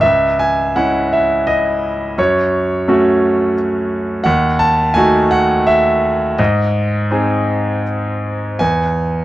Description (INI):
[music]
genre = classical, lyrical solo piano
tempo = 79-89 BPM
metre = 3/4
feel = rubato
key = C# minor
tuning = A4 = 440 Hz
[part]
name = bright grand piano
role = solo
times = 0.0-9.2 s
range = C#2 to A5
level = -13 LUFS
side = equal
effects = none
[sound]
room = light reverb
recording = dark, warm production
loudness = -13 LUFS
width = side -15 dB against mid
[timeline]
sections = 0.0-9.2 A section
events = none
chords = 0.0 C#m; 2.2 F#m; 4.3 D#dim; 6.4 G#; 8.6 E